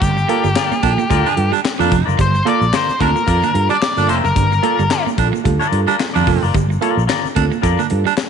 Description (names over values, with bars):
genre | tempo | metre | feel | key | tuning
funk | 110 BPM | 4/4 | swing 56% on 16ths | G minor | A4 = 440 Hz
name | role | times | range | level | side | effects
octave-fuzz lead guitar | melody | 0.0-5.0 s | G4 to D5 | -19 LUFS | left 4 dB | distortion, slapback echo
barky reed electric piano | stabs | 0.0-8.1 s | G2 to A4 | -23 LUFS | right 11 dB | overdrive, fast tremolo
fingered electric bass | bass | 0.0-8.0 s | F1 to G2 | -18 LUFS | equal | none
crisp fusion drum kit | drums | 0.0-8.3 s | handclaps, hi-hat, kick drum, snare drum | -21 LUFS | left 3 dB | none
egg shaker | percussion | 0.0-8.3 s | none | -41 LUFS | left 15 dB | none
electric guitar at the edge of break-up | riff | 0.2-8.1 s | F3 to C4 | -25 LUFS | right 12 dB | none
twangy electric guitar | accompaniment | 0.3-7.8 s | F4 to E5 | -23 LUFS | left 12 dB | none
raspy baritone saxophone | second line | 0.8-8.1 s | D4 | -23 LUFS | right 13 dB | none
room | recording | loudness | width
moderate echo chamber reverb, RT60 2.4 s | 1960s-style stereo with parts hard left and right, nothing above 10.7 kHz | -13 LUFS | side -7 dB against mid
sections
0.0-8.3 A section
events
none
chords
0.0 Gm7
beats
| 0.02 0.56 1.10 1.65 | 2.19 2.73 3.28 3.82 | 4.36 4.91 5.45 6.00 | 6.54 7.08 7.63 8.18